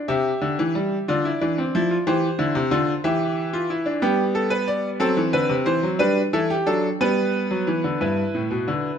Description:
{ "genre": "classical, baroque-style 3-part fugue for grand piano", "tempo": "60 BPM (dotted quarters)", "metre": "6/8", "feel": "straight", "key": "C major", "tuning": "A4 = 440 Hz", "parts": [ { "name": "bright grand piano", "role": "solo", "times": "0.0-9.0 s", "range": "G2 to E5", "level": "-20 LUFS", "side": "equal", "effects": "none" } ], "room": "light reverb", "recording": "close, detailed microphones", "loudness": "-20 LUFS", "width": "side -8 dB against mid", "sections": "0.1-8.0 A section", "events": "none", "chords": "0.1 C; 1.1 Dm9; 2.1 C; 3.0 Em7; 4.0 G; 5.0 F#dim; 6.0 G; 8.0 Em/G", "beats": "| 0.09 1.09 | 2.07 3.04 | 4.02 5.00 | 5.99 7.00 | 8.00" }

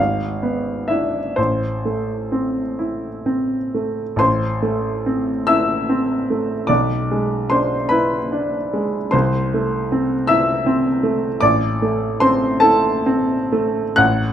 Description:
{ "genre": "classical, romantic nocturne for solo piano", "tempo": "41-55 BPM (dotted quarters)", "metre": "12/8", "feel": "rubato", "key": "A minor", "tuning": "A4 = 440 Hz", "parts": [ { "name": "clear baby grand piano", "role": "solo", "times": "0.0-14.3 s", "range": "G#1 to F#6", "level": "-17 LUFS", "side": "equal", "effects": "none" } ], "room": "moderate recital hall reverb, RT60 1.8 s", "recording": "close, detailed microphones", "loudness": "-17 LUFS", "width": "side -10 dB against mid", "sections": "0.0-4.2 A section; 4.2-14.3 A section", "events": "none", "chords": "0.0 E7/G#; 1.4 Am; 6.7 E7/B; 9.1 Am/C; 11.4 Am", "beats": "1.37 2.78 | 4.19 5.47 6.69 7.91 | 9.13 10.29 11.42 12.63 | 13.99" }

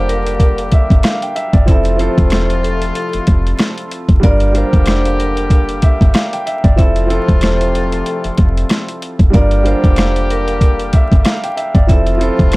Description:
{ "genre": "hip hop, boom-bap hip-hop", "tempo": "94 BPM", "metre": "4/4", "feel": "swing 57% on 16ths", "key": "G dorian", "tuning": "A4 = 440 Hz", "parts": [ { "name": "vibraphone with medium hard mallets", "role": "melody", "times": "0.0-12.6 s", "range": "A4 to E5", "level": "-21 LUFS", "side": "equal", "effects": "high-pass filter, low-pass filter, tape echo" }, { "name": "warm upright piano", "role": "accompaniment", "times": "0.0-12.6 s", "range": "F3 to G5", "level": "-20 LUFS", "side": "right 1 dB", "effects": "high-pass filter, low-pass filter" }, { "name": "warm horn section", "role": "stabs", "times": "0.0-12.6 s", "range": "C3 to G4", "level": "-23 LUFS", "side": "left 2 dB", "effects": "high-pass filter, low-pass filter, tape echo" }, { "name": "woody FM bass", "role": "bass", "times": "0.0-12.6 s", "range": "E1 to G1", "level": "-16 LUFS", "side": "equal", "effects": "none" }, { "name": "boom bap sampler-style drum kit", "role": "drums", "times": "0.1-12.6 s", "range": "hi-hat, kick drum, rim click, snare drum", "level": "-12 LUFS", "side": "equal", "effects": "none" } ], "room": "little or no reverb", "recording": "dark, warm production, vinyl crackle", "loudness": "-11 LUFS", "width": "side -22 dB against mid", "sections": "0.0-12.6 A section", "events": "none", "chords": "0.0 Gm7; 1.7 Fmaj7; 4.2 Gm7; 6.8 Fmaj7; 9.3 Gm7; 11.9 Fmaj7", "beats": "0.40 1.04 | 1.68 2.32 2.96 3.59 | 4.23 4.87 5.51 6.15 | 6.79 7.42 8.06 8.70 | 9.34 9.98 10.62 11.25 | 11.89 12.53" }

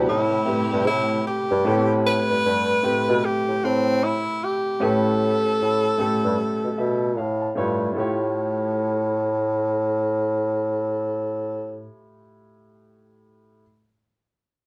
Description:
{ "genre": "R&B, neo-soul", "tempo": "76 BPM", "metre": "4/4", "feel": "swing 60% on 16ths", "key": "unclear", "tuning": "A4 = 436 Hz", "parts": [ { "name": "warm upright piano", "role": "accompaniment", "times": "0.0-13.6 s", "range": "A2 to A5", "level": "-29 LUFS", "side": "equal", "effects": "none" }, { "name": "warm studio string section", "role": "sustained chords", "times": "0.0-1.6 s", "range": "C3 to B4", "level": "-33 LUFS", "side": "equal", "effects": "none" }, { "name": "mellow bassoon", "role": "bass", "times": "0.0-11.9 s", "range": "G2 to B2", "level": "-25 LUFS", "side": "equal", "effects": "none" }, { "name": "breathy tenor saxophone", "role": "melody", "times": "0.1-7.2 s", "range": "C4 to B4", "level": "-25 LUFS", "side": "equal", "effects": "none" } ], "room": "moderate large studio reverb, RT60 0.8 s", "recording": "band playing live in one room", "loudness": "-22 LUFS", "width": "mono", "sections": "0.0-1.6 A section; 1.6-8.0 B section; 8.0-11.1 C section", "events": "upright piano fill 6.4-8.0", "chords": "0.1 Am9; 4.8 A7; 7.2 A7b13", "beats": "0.06 0.85 | 1.64 2.43 3.22 4.01 | 4.80 5.59 6.38 7.17 | 7.96 8.74 9.54 10.32" }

